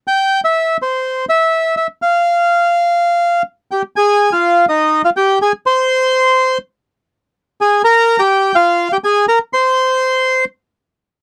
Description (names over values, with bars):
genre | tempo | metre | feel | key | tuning
tango | 124 BPM | 4/4 | rubato | Ab major from 3.9 s | A4 = 437 Hz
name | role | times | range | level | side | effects
bandoneon | solo | 0.1-10.4 s | Eb4 to C6 | -14 LUFS | equal | none
room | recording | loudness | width
light reverb | dry, close 1970s-style studio recording | -14 LUFS | mono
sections
0.0-3.9 A section; 3.9-11.2 B section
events
none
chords
0.0 N.C.; 3.9 Ab; 7.8 Bb5; 9.7 N.C.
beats
| 0.06 0.54 1.03 1.51 | 1.99 2.48 2.96 3.45 | 3.94 4.42 4.91 5.40 | 5.88 6.37 6.85 7.33 | 7.81 8.30 8.78 9.26 | 9.74 10.23